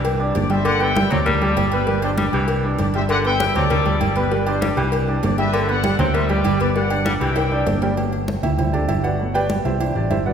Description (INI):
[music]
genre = latin, salsa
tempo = 197 BPM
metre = 4/4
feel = straight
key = G major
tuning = A4 = 440 Hz
[part]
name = warm trumpet section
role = melody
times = 0.0-7.8 s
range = G4 to G5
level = -25 LUFS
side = left 3 dB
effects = none
[part]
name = clear baritone saxophone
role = second line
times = 0.0-7.7 s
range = D3 to G3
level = -26 LUFS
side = left 2 dB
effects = none
[part]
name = warm baby grand piano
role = accompaniment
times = 0.0-10.3 s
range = E3 to G6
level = -23 LUFS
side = right 2 dB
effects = none
[part]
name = fingered electric bass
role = bass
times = 0.0-10.3 s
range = G1 to D2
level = -22 LUFS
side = equal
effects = none
[part]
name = agogo bells and timbales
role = percussion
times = 0.0-10.3 s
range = none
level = -28 LUFS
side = right 3 dB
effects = none
[part]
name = cowbell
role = percussion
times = 0.0-8.0 s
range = none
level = -28 LUFS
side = left 2 dB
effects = none
[part]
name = congas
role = percussion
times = 0.1-10.3 s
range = none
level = -26 LUFS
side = equal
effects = none
[sound]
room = wet scoring stage reverb, RT60 1.9 s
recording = recorded in a church or concert hall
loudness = -17 LUFS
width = side -7 dB against mid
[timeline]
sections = 0.0-8.0 A section; 8.0-10.3 B section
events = drum fill 7.4-8.0; grand piano solo 8.0-10.3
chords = 0.0 Cadd9; 0.7 Gmaj7; 1.9 G; 3.1 Gmaj7; 4.3 G; 5.5 Gmaj7; 6.8 Cadd9; 8.0 Gmaj7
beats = 0.04 0.35 | 0.66 0.96 1.27 1.57 | 1.88 2.18 2.49 2.79 | 3.10 3.40 3.71 4.01 | 4.32 4.62 4.92 5.23 | 5.54 5.84 6.14 6.45 | 6.75 7.06 7.36 7.67 | 7.97 8.28 8.58 8.89 | 9.19 9.50 9.80 10.11